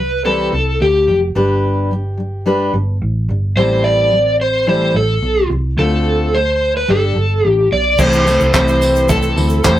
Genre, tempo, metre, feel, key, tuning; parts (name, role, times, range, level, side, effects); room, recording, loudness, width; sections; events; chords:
acoustic pop; 109 BPM; 4/4; straight; A4 = 439 Hz
overdriven slide guitar; melody; 0.0-9.8 s; G4 to D5; -15 LUFS; equal
fingerpicked steel-string acoustic guitar; accompaniment; 0.0-9.8 s; A2 to B4; -18 LUFS; left 1 dB
hollow-body short-scale fingered electric bass; bass; 0.0-9.8 s; F1 to E2; -18 LUFS; equal
cloth-damped thuddy drum kit; drums; 8.0-9.8 s; crash cymbal, handclaps, kick drum, tambourine; -17 LUFS; equal
tube shaker; percussion; 8.0-9.8 s; -33 LUFS; right 5 dB
moderate small room reverb, RT60 0.5 s; rough rehearsal-room recording; -12 LUFS; side -13 dB against mid
0.0-8.0 A section; 8.0-9.8 B section
0.0 Cmaj7; 1.4 G; 3.6 Am7; 5.8 Dm7; 6.9 Gsus2; 8.0 Am/C